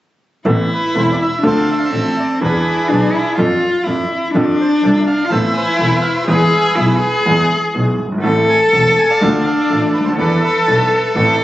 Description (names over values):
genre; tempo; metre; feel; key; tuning
tango; 124 BPM; 4/4; rubato; A harmonic minor; A4 = 444 Hz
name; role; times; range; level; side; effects
warm cello; second line; 0.5-11.4 s; C4 to A4; -15 LUFS; left 1 dB; none
clear concert grand piano; accompaniment; 0.5-11.4 s; E1 to A4; -19 LUFS; right 1 dB; none
warm double bass; bass; 0.5-11.4 s; E1 to F2; -20 LUFS; equal; none
bandoneon; melody; 0.7-11.4 s; D4 to A5; -19 LUFS; right 2 dB; none
room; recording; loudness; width
light reverb; recorded on a phone in the room, club reverb, compression, nothing above 7.9 kHz; -12 LUFS; side -15 dB against mid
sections
0.5-11.4 A section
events
none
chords
0.5 Amadd9; 1.4 Dm7; 2.4 E7; 3.4 Dm7/F; 4.3 F6; 5.3 Amadd9; 6.3 E; 8.3 Am; 9.2 Dm; 10.2 E7sus4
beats
| 0.46 0.96 1.45 1.93 | 2.42 2.90 3.39 3.87 | 4.35 4.83 5.32 5.80 | 6.29 6.78 7.27 7.76 | 8.25 8.74 9.23 9.72 | 10.20 10.68 11.16